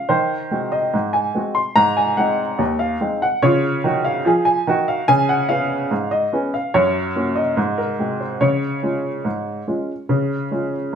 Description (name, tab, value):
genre	ragtime piano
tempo	72 BPM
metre	2/4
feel	straight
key	Db major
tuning	A4 = 440 Hz
part	warm upright piano	solo	0.0-11.0 s	Eb2 to C6	-17 LUFS	equal	none
room	wet studio reverb, RT60 0.8 s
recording	band playing live in one room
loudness	-17 LUFS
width	side -7 dB against mid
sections	0.0-11.0 A section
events	none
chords	0.1 Ab7/Eb; 1.8 Ab; 3.4 Db; 5.1 Db5; 6.7 Gb; 7.6 Ab7; 8.4 Db